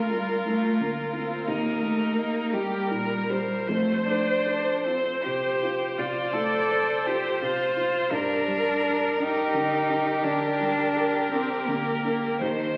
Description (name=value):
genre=classical, slow romantic movement for piano quartet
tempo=49-59 BPM (dotted quarters)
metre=12/8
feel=rubato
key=unclear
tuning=A4 = 440 Hz
part: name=rich violin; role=melody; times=0.0-12.8 s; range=Eb4 to D5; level=-31 LUFS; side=equal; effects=none
part: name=rich cello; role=second line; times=0.0-12.8 s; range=Eb3 to A4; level=-30 LUFS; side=equal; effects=none
part: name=bright viola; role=accompaniment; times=0.0-12.8 s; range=Bb4 to C5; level=-32 LUFS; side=equal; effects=none
part: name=dark baby grand piano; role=accompaniment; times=0.0-12.8 s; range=D2 to Eb5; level=-36 LUFS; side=equal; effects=none
room=wet recital hall reverb, RT60 1.6 s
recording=very old 78 rpm record, vinyl crackle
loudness=-26 LUFS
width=mono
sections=0.0-12.8 A section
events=none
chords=0.0 Bb/D; 1.5 Eb; 3.7 F; 8.1 Gm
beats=0.46 1.48 2.54 | 3.69 4.86 5.99 7.06 | 8.12 9.20 10.25 11.32 | 12.41